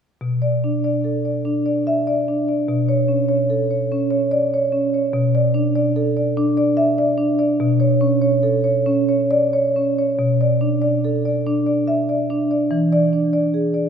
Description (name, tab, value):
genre	classical, contemporary piece for solo marimba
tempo	73 BPM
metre	3/4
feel	rubato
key	B minor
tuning	A4 = 440 Hz
part	marimba with medium hard mallets	solo	0.2-13.9 s	B2 to E5	-16 LUFS	equal	none
room	wet concert hall reverb, RT60 1.9 s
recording	heard from further back in the room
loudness	-16 LUFS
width	side -7 dB against mid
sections	0.2-10.2 A section; 10.2-13.9 B section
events	none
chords	0.2 Bm7; 2.7 Aadd9/B; 5.1 Bm7; 7.6 Aadd9/B; 10.2 Bm7; 12.7 E7